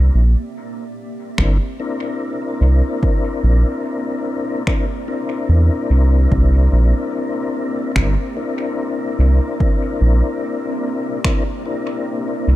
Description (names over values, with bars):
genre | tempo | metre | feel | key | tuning
ambient dub | 73 BPM | 4/4 | swing 58% on 16ths | C mixolydian | A4 = 442 Hz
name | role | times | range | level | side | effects
granular cloud pad | sustained chords | 0.0-12.6 s | Bb3 to E5 | -30 LUFS | right 2 dB | built-in reverb
round analog bass | bass | 0.0-12.6 s | G1 to E2 | -12 LUFS | equal | none
tonewheel organ | stabs | 1.4-12.6 s | C4 to Bb4 | -22 LUFS | left 3 dB | chorus vibrato, slow rotary speaker, dub echo
electronic finger snaps | drums | 1.4-11.4 s | none | -27 LUFS | equal | dub echo
electronic kick drum | drums | 1.4-11.4 s | none | -19 LUFS | equal | none
room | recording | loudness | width
digital ambience | dark, warm production | -16 LUFS | side -15 dB against mid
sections
0.0-12.6 A section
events
none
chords
0.0 C9